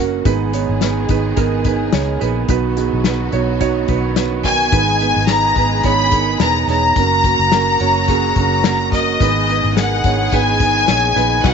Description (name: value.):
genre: piano-driven pop.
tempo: 107 BPM.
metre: 4/4.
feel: swing 56% on 16ths.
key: unclear.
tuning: A4 = 440 Hz.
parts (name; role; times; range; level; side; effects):
felt-muted upright piano; accompaniment; 0.0-11.5 s; G#2 to C#5; -19 LUFS; right 13 dB; none.
rich studio string section; sustained chords; 0.0-11.5 s; C#3 to G#4; -27 LUFS; left 3 dB; none.
vintage muted fingered electric bass; bass; 0.0-11.5 s; E1 to C#2; -20 LUFS; left 1 dB; none.
unplugged drum kit; drums; 0.3-11.5 s; crash cymbal, hi-hat, kick drum, snare drum; -19 LUFS; left 4 dB; none.
clear studio violin section; melody; 4.4-11.5 s; D#5 to B5; -16 LUFS; left 2 dB; none.
room: moderate spring reverb, RT60 2.2 s.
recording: 1960s-style stereo, nothing above 7.8 kHz.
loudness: -13 LUFS.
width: side -6 dB against mid.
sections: 0.0-11.5 A section.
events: none.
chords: 0.3 G#m; 2.5 B; 4.7 G#m; 7.0 F#; 9.2 G#m.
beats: | 0.25 0.81 1.37 1.93 | 2.49 3.05 3.61 4.17 | 4.72 5.28 5.84 6.40 | 6.96 7.52 8.08 8.64 | 9.20 9.76 10.32 10.88 | 11.44.